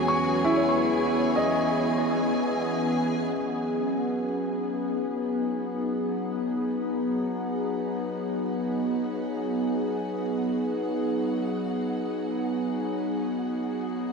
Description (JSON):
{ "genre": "ambient", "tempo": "free time", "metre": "none", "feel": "none", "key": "B major", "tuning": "A4 = 440 Hz", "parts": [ { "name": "warbly tape-like pad", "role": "sustained chords", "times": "0.0-14.1 s", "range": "E3 to G#4", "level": "-26 LUFS", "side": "equal", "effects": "chorus, built-in reverb, shimmer reverb" }, { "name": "felt-muted upright piano", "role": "arpeggios", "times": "0.0-4.2 s", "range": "F#3 to C#6", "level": "-27 LUFS", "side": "equal", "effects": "tape echo, shimmer reverb" }, { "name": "deep rumbling drone", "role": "bass", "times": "0.0-3.3 s", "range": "E2", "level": "-51 LUFS", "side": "right 1 dB", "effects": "built-in reverb, phaser" }, { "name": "warm studio violin section", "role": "texture", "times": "0.0-14.1 s", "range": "F#4 to G#5", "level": "-37 LUFS", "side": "left 2 dB", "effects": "shimmer reverb" } ], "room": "wet huge ambient reverb, RT60 7.2 s", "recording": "dark, warm production", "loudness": "-25 LUFS", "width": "side -4 dB against mid", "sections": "0.0-3.4 A section; 3.4-14.1 B section", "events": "fade-in on violin section 3.4-14.1", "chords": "0.0 E6; 3.4 B6" }